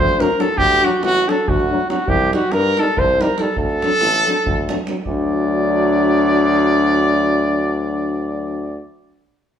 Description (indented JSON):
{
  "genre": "balkan folk, Balkan brass band",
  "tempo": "282 BPM (eighths)",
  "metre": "7/8",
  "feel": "straight",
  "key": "unclear",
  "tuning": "A4 = 440 Hz",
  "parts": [
    { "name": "mellow trumpet", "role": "melody", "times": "0.0-8.8 s", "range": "F#4 to D5", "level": "-18 LUFS", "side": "right 1 dB", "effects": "none" },
    { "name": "dark flugelhorn", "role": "second line", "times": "0.0-8.8 s", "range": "D4 to C5", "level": "-24 LUFS", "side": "left 2 dB", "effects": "none" },
    { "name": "clear tuba", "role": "bass", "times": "0.0-8.8 s", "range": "A1 to G2", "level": "-22 LUFS", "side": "equal", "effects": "none" },
    { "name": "davul", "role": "percussion", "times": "0.1-5.3 s", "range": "none", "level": "-24 LUFS", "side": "right 1 dB", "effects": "none" },
    { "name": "mellow euphonium", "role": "accompaniment", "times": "0.2-8.8 s", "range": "D4 to Eb4", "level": "-22 LUFS", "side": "left 5 dB", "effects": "none" },
    { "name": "warm trombone", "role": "accompaniment", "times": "0.2-8.8 s", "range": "F#3 to G3", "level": "-26 LUFS", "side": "right 4 dB", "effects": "none" }
  ],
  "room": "wet stone room reverb, RT60 1.0 s",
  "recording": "band playing live in one room",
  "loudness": "-14 LUFS",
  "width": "side -8 dB against mid",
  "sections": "0.0-5.1 A section; 5.1-8.0 B section",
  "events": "none",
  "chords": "0.0 D; 2.1 Cm; 3.6 D",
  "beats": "0.14 0.36 | 0.57 0.79 1.00 1.22 1.44 1.65 1.86 | 2.08 2.29 2.51 2.72 2.94 3.15 3.36 | 3.58 3.79 4.00 4.22 4.43 4.64 4.85 | 5.07 5.28 5.49 5.70 5.92 6.13 6.34 | 6.55 6.76 6.98 7.19 7.40 7.61 7.82"
}